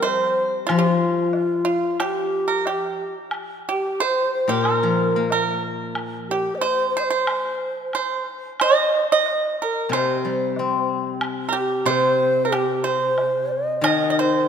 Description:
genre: chinese traditional, Chinese chamber ensemble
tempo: 91 BPM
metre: 2/4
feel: rubato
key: unclear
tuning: A4 = 436 Hz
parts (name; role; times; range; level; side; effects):
- low xiao; melody; 0.0-14.5 s; F4 to Eb5; -23 LUFS; equal; none
- pipa; second line; 0.0-14.5 s; F4 to Eb5; -23 LUFS; right 5 dB; none
- steel-string zither; accompaniment; 0.0-6.5, 9.9-14.5 s; Bb2 to C4; -24 LUFS; left 5 dB; none
- woodblock; percussion; 0.0-14.0 s; none; -31 LUFS; equal; none
room: wet concert hall reverb, RT60 2.5 s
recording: none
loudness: -19 LUFS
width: side -7 dB against mid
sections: 0.0-3.3 A section; 3.3-13.9 B section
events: none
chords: none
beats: 0.05 | 0.70 1.35 | 2.00 2.67 | 3.33 4.00 | 4.66 5.31 | 5.97 6.62 | 7.27 7.94 | 8.60 9.26 | 9.91 10.56 | 11.21 11.86 | 12.52 13.19 | 13.86

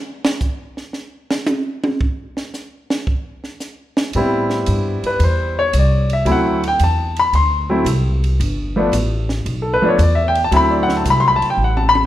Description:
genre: jazz piano trio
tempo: 113 BPM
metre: 4/4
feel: swing 69% on 8ths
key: unclear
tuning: A4 = 440 Hz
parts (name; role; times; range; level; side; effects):
- compact cocktail drum kit; drums; 0.2-12.1 s; hi-hat, kick drum, ride cymbal, snare drum, toms; -23 LUFS; right 2 dB; none
- upright bass; bass; 4.1-12.1 s; G1 to A2; -18 LUFS; equal; none
- warm grand piano; melody; 4.2-12.0 s; F3 to C6; -16 LUFS; left 1 dB; none
room: moderate recital hall reverb, RT60 1.4 s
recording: recorded in a church or concert hall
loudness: -15 LUFS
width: side -13 dB against mid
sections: 0.0-12.1 A section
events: grand piano solo 0.0-12.1; drum solo 0.0-4.1; drum fill 11.6-12.1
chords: 0.0 N.C.; 4.1 Am7; 6.3 D7; 8.4 G; 10.5 D7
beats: 0.42 0.95 1.49 | 2.02 2.55 3.08 3.61 | 4.14 4.68 5.21 5.74 | 6.27 6.80 7.34 7.87 | 8.40 8.93 9.47 10.00 | 10.53 11.06 11.60

